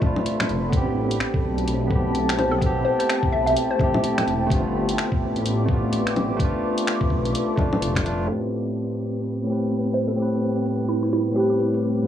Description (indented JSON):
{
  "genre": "future garage",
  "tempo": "127 BPM",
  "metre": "4/4",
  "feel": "swing 60% on 16ths",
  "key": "A minor",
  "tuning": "A4 = 438 Hz",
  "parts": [
    { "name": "barky tine electric piano", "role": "accompaniment", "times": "0.0-12.1 s", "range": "G2 to B4", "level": "-25 LUFS", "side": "right 1 dB", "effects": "vintage 12-bit sampler grit, sidechain pumping, low-pass filter, analog delay" },
    { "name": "deep dark ambient pad", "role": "sustained chords", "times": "0.0-12.1 s", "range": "A3 to D6", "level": "-28 LUFS", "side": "left 2 dB", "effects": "chorus, built-in reverb, sidechain pumping" },
    { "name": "electronic kick drum", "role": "drums", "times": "0.0-8.0 s", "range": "none", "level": "-23 LUFS", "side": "equal", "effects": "none" },
    { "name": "garage drum kit", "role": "drums", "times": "0.0-11.8 s", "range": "bongos, finger snaps, hi-hat", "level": "-28 LUFS", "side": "left 2 dB", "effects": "none" },
    { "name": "flickering grainy texture", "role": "texture", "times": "0.0-12.1 s", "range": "B3 to B5", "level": "-33 LUFS", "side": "equal", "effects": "none" },
    { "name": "dark detuned saw bass", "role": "bass", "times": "0.5-8.3 s", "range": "E1 to B1", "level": "-26 LUFS", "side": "equal", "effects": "tube saturation, sidechain pumping" },
    { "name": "hollow square pluck", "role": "melody", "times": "2.4-4.2, 9.9-11.6 s", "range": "E4 to E5", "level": "-24 LUFS", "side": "equal", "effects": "chorus, vintage 12-bit sampler grit, tape echo" }
  ],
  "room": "moderate huge ambient reverb, RT60 4.7 s",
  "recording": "cassette tape, low-pass filter, small room ambience",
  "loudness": "-20 LUFS",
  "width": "side -10 dB against mid",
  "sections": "0.0-8.3 A section; 8.3-12.1 B section",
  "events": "filter sweep on tine electric piano 8.3-12.1; filter sweep 8.3-12.1",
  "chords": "0.0 Bm7b5; 0.7 Am7; 4.5 G7; 6.4 Bm7b5; 8.3 Am7"
}